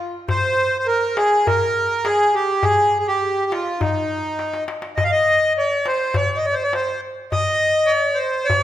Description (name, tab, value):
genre	Arabic maqam ensemble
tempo	102 BPM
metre	4/4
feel	straight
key	C maqam bayati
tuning	A4 = 440 Hz
part	accordion	melody	0.3-8.6 s	Eb4 to F5	-17 LUFS	equal	none
part	darbuka	percussion	0.3-8.6 s	none	-27 LUFS	left 3 dB	none
room	wet recital hall reverb, RT60 1.6 s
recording	none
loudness	-17 LUFS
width	side -12 dB against mid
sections	0.0-8.6 A section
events	drum fill 4.4-5.0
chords	none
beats	| 0.29 0.88 1.46 2.05 | 2.63 3.22 3.81 4.39 | 4.98 5.56 6.15 6.74 | 7.32 7.91 8.49